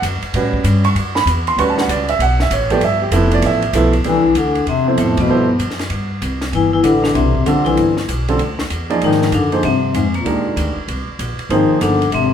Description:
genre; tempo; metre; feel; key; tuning
modal jazz; 194 BPM; 4/4; swing 64% on 8ths; D major, C major from 4.0 s; A4 = 440 Hz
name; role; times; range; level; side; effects
warm baby grand piano; accompaniment; 0.0-12.0 s; B2 to C#6; -18 LUFS; right 4 dB; none
upright bass; bass; 0.0-12.3 s; F1 to A2; -20 LUFS; equal; none
compact cocktail drum kit; drums; 0.0-12.2 s; hi-hat, kick drum, ride cymbal, snare drum; -25 LUFS; right 1 dB; none
mellow bass clarinet; second line; 4.0-12.3 s; Ab2 to E3; -19 LUFS; left 6 dB; none
vibraphone with medium hard mallets; melody; 4.1-12.3 s; Ab3 to E4; -17 LUFS; left 3 dB; none
room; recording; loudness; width
wet large studio reverb, RT60 1.4 s; band playing live in one room; -14 LUFS; side -8 dB against mid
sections
0.0-4.0 A section; 4.0-12.3 B section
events
band accent 5.1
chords
0.0 Dmaj9; 2.8 G13; 4.0 Cmaj9; 9.0 Abmaj9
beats
0.03 | 0.34 0.65 0.96 1.27 | 1.58 1.89 2.19 2.50 | 2.81 3.12 3.43 3.74 | 4.05 4.36 4.67 4.98 | 5.29 5.60 5.91 6.22 | 6.53 6.84 7.16 7.46 | 7.78 8.09 8.40 8.71 | 9.02 9.33 9.64 9.95 | 10.26 10.57 10.88 11.19 | 11.49 11.80 12.11

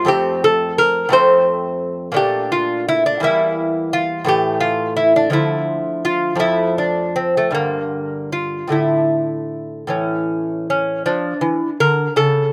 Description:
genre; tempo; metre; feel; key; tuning
classical, baroque-style dance for lute; 50-58 BPM (dotted quarters); 6/8; rubato; D minor; A4 = 440 Hz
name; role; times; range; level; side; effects
lute; solo; 0.0-12.5 s; E2 to C5; -18 LUFS; equal; slapback echo
room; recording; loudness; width
little or no reverb; recorded outdoors, with no room sound; -18 LUFS; mono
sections
0.0-11.1 A section; 11.1-12.5 B section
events
none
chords
0.1 F; 2.2 Bbmaj7; 3.2 Edim; 4.3 A5; 5.3 Dm; 6.4 F; 7.5 Gm; 8.7 Asus4; 9.9 A; 11.1 Dm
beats
| 0.10 1.14 | 2.17 3.23 | 4.28 5.34 | 6.42 7.55 | 8.72 9.92 | 11.08 12.17

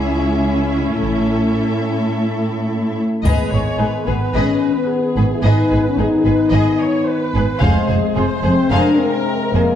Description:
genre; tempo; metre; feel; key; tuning
cinematic, epic orchestral film score; 109 BPM; 4/4; straight; G# phrygian; A4 = 445 Hz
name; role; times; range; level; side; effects
rich symphonic violin section; second line; 0.0-9.6 s; D#4 to E5; -26 LUFS; left 2 dB; none
warm symphonic viola section; accompaniment; 0.0-9.8 s; C#4 to D#5; -23 LUFS; equal; none
warm symphonic cello section; bass; 0.0-9.6 s; C#2 to A2; -20 LUFS; right 1 dB; none
warm symphonic double bass section; bass; 1.0-9.6 s; F1 to A1; -20 LUFS; right 2 dB; none
warm symphonic violin section; melody; 3.2-9.6 s; G#4 to F5; -27 LUFS; left 3 dB; none
warm French horn section; sustained chords; 3.2-9.8 s; G#3 to E4; -18 LUFS; left 4 dB; none
warm trombone section; sustained chords; 3.2-9.8 s; C3 to B3; -24 LUFS; right 2 dB; none
taiko ensemble; drums; 3.2-8.7 s; none; -20 LUFS; equal; none
triangle; percussion; 3.3-4.3 s; none; -41 LUFS; left 4 dB; none
room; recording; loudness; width
moderate scoring stage reverb, RT60 1.5 s; dark, warm production; -14 LUFS; side -10 dB against mid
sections
0.0-3.2 A section; 3.2-9.8 B section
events
build-up 0.0-3.2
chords
0.0 C#m; 1.0 A; 3.2 G#m; 7.6 Fm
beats
0.45 | 1.01 1.57 2.13 2.69 | 3.25 3.80 4.35 4.90 | 5.44 5.99 6.53 7.08 | 7.62 8.17 8.71 9.27

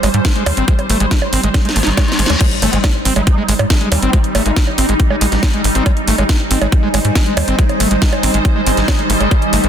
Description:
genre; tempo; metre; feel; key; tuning
psychedelic trance; 139 BPM; 4/4; straight; Ab major; A4 = 440 Hz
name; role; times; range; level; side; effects
swarming drone; sustained chords; 0.0-9.7 s; G3 to C5; -20 LUFS; right 1 dB; built-in reverb, sidechain pumping
screaming distorted acid line; riff; 0.0-9.7 s; Ab3 to Eb4; -21 LUFS; moving between left 5 dB and right 4 dB; distortion, chorus, auto-pan, sidechain pumping, dub echo
tight sequencer bass; bass; 0.0-9.7 s; Ab1 to Ab2; -16 LUFS; equal; none
techno drum kit; drums; 0.0-9.7 s; bongos, crash cymbal, hi-hat, snare drum; -19 LUFS; right 2 dB; overdrive
deep dark ambient pad; texture; 0.0-9.7 s; Eb4 to Ab5; -24 LUFS; equal; chorus, built-in reverb, sidechain pumping
electronic kick drum; drums; 0.2-9.4 s; none; -14 LUFS; equal; overdrive
reverse cymbal and impact; sound effects; 1.7-4.1 s; none; -24 LUFS; left 2 dB; none
vowel-sweep wobble bass; second line; 2.6-4.5, 9.5-9.7 s; Ab3 to Eb4; -27 LUFS; right 2 dB; ensemble chorus, sidechain pumping, high-pass filter, dub echo
room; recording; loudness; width
light reverb, digital ambience; dense, heavily limited modern master; -12 LUFS; side -8 dB against mid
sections
0.0-2.4 A section; 2.4-9.7 B section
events
drum fill 1.5-2.4; reverse cymbal 1.7-2.4; band accent 2.3; drop 2.4-9.7; impact 2.4-4.1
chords
0.0 Ab5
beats
0.25 | 0.68 1.11 1.54 1.98 | 2.41 2.84 3.27 3.70 | 4.13 4.57 5.00 5.43 | 5.86 6.29 6.72 7.16 | 7.59 8.02 8.45 8.88 | 9.31

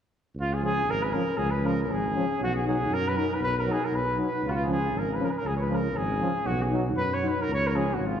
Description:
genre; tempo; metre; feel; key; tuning
balkan folk, Balkan brass band; 118 BPM; 2/4; swing 53% on 16ths; Db mixolydian; A4 = 440 Hz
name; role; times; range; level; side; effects
mellow trumpet; melody; 0.4-8.2 s; F4 to Db5; -28 LUFS; equal; none
mellow tuba; bass; 0.4-8.2 s; Ab1 to Gb2; -29 LUFS; equal; none
bright trombone; accompaniment; 0.6-7.8 s; F3 to Gb3; -34 LUFS; right 4 dB; none
warm euphonium; accompaniment; 0.6-7.8 s; Db4 to Eb4; -32 LUFS; left 4 dB; none
room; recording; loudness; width
wet concert hall reverb, RT60 2.0 s; heard from further back in the room; -24 LUFS; side -8 dB against mid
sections
0.4-8.2 A section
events
none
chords
0.4 Db; 2.4 Cb; 4.4 Db; 6.5 Cb; 7.5 Db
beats
| 0.36 0.87 | 1.38 1.89 | 2.40 2.90 | 3.41 3.92 | 4.43 4.93 | 5.44 5.95 | 6.46 6.97 | 7.47 7.98

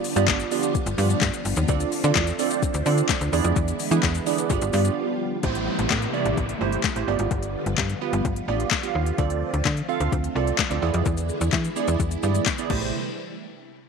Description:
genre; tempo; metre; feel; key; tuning
dance-pop; 128 BPM; 4/4; straight; A minor; A4 = 440 Hz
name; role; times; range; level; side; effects
glassy wavetable pluck; accompaniment; 0.0-12.9 s; A3 to F5; -27 LUFS; right 14 dB; chorus, sidechain pumping
phased string machine; sustained chords; 0.0-12.9 s; C3 to F4; -30 LUFS; left 1 dB; ensemble chorus, phaser, sidechain pumping
smooth R&B drum kit; drums; 0.0-12.8 s; crash cymbal, handclaps, hi-hat, kick drum, shaker, snare drum; -25 LUFS; left 6 dB; overdrive
slap-like FM bass; bass; 0.2-12.9 s; G1 to E3; -24 LUFS; left 1 dB; sidechain pumping
downlifter; sound effects; 5.4-9.2 s; none; -33 LUFS; right 1 dB; none
room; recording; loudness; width
light reverb; 1960s-style stereo with parts hard left and right; -21 LUFS; side -5 dB against mid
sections
0.0-5.4 A section; 5.4-12.9 B section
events
drop 0.0-5.4; break 5.0-5.4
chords
0.0 G7; 1.7 Dm7; 3.3 E7; 4.5 G7; 5.4 Am7; 7.1 G7; 9.2 Dm7; 10.8 E7; 12.7 Am7; 12.9 N.C.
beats
0.28 0.75 1.22 | 1.69 2.15 2.62 3.09 | 3.56 4.03 4.50 4.97 | 5.43 5.90 6.37 6.84 | 7.31 7.78 8.25 8.72 | 9.19 9.65 10.12 10.59 | 11.06 11.53 12.00 12.47

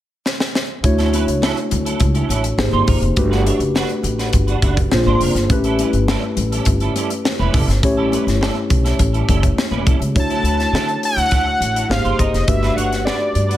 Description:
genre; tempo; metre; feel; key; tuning
polished 1980s jazz-funk pop; 103 BPM; 4/4; straight; D major; A4 = 440 Hz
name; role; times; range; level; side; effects
tight funk drum kit; drums; 0.3-13.6 s; hi-hat, kick drum, snare drum; -20 LUFS; equal; none
tine electric piano; accompaniment; 0.8-13.6 s; A3 to C#5; -21 LUFS; left 1 dB; analog chorus
clean electric guitar; riff; 0.8-13.6 s; F#3 to C#5; -25 LUFS; right 6 dB; ensemble chorus
upright bass; bass; 0.8-13.6 s; E1 to D3; -19 LUFS; equal; none
congas; percussion; 1.1-9.9 s; none; -30 LUFS; left 7 dB; none
fat analog lead; melody; 10.2-13.6 s; D5 to A5; -20 LUFS; equal; none
room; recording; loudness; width
light reverb, small room ambience; none; -15 LUFS; side -13 dB against mid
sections
0.8-10.2 A section; 10.2-13.6 B section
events
drum fill 0.3-0.8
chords
0.0 N.C.; 0.8 Dmaj9; 2.6 G#maj9; 3.2 Gmaj9; 4.9 Bb9; 5.5 A7; 10.2 Dmaj9; 11.9 G#maj9; 12.5 Gmaj9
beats
0.26 | 0.84 1.42 2.00 2.59 | 3.17 3.75 4.33 4.92 | 5.50 6.08 6.66 7.24 | 7.83 8.41 8.99 9.57 | 10.15 10.74 11.32 11.90 | 12.48 13.06

